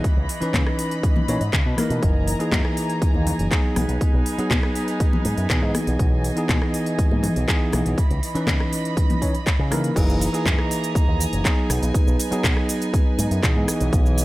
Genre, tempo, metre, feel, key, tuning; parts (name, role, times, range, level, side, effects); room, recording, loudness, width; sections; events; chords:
nu-disco, nu disco; 121 BPM; 4/4; straight; B major; A4 = 441 Hz
bell-like tine electric piano; accompaniment; 0.0-14.2 s; E3 to C#5; -25 LUFS; equal; sidechain pumping, tape echo
rich chamber string section; sustained chords; 0.0-14.2 s; E3 to B5; -30 LUFS; right 1 dB; sidechain pumping
picked electric bass with an envelope filter; bass; 0.0-14.2 s; F#1 to C#3; -24 LUFS; equal
electronic kick drum; drums; 0.0-14.0 s; -21 LUFS; equal; studio reverb
house drum kit; drums; 0.0-14.2 s; crash cymbal, handclaps, hi-hat, rim click, shaker; -28 LUFS; equal; studio reverb
congas; percussion; 0.5-9.8 s; -29 LUFS; left 2 dB
little or no reverb; -18 LUFS; side -18 dB against mid
0.0-10.0 A section; 10.0-14.2 B section
drop 10.0-14.2
0.0 C#m9; 2.0 F#13; 3.8 B6; 5.7 Emaj7/B; 8.0 C#m9; 10.0 F#13; 11.7 B6; 13.7 Emaj7/B